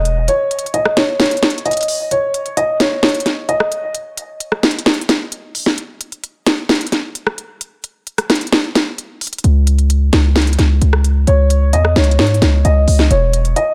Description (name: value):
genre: hip hop, trap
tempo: 131 BPM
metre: 4/4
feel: half-time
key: unclear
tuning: A4 = 440 Hz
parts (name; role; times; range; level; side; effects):
- dark concert grand piano; melody; 0.0-3.9, 11.3-13.7 s; C#5 to D#5; -20 LUFS; equal; low-pass filter, dub echo
- hard-hitting 808-style bass; bass; 0.0-0.3, 9.4-13.5 s; E1 to G#2; -14 LUFS; equal; none
- trap drum kit; drums; 0.1-13.7 s; hi-hat, rim click, snare drum; -18 LUFS; equal; none
room: light reverb, digital ambience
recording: echo-heavy mix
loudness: -15 LUFS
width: mono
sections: 0.0-2.1 A section; 2.1-13.7 B section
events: kick muted 0.3-2.1; break 2.1-9.4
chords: 0.0 E5; 2.1 N.C.